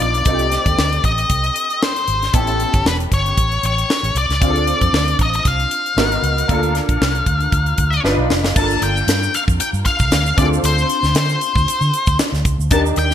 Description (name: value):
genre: polished 1980s jazz-funk pop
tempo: 116 BPM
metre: 4/4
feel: swing 54% on 16ths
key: unclear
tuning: A4 = 440 Hz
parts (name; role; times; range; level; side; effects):
- octave-fuzz lead guitar; melody; 0.0-13.1 s; A4 to A5; -19 LUFS; left 3 dB; distortion
- clear baby grand piano; accompaniment; 0.0-13.1 s; A3 to B4; -23 LUFS; equal; ensemble chorus
- vintage muted fingered electric bass; bass; 0.0-13.1 s; E1 to D3; -20 LUFS; equal; none
- tight funk drum kit; drums; 0.0-13.1 s; crash cymbal, hi-hat, kick drum, snare drum; -19 LUFS; equal; gated reverb
- tube shaker; percussion; 8.6-13.1 s; none; -32 LUFS; right 14 dB; none
room: moderate plate reverb, RT60 1.2 s, studio reverb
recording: bright 1980s-style digital production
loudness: -14 LUFS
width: side -10 dB against mid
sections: 0.0-8.6 A section; 8.6-13.1 B section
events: drum fill 8.0-8.6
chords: 0.3 Cm69; 2.3 A7; 4.4 Dm7; 6.0 Abm9; 6.5 Bbmaj9; 8.0 G7b13; 8.6 Gm9; 10.4 Dm7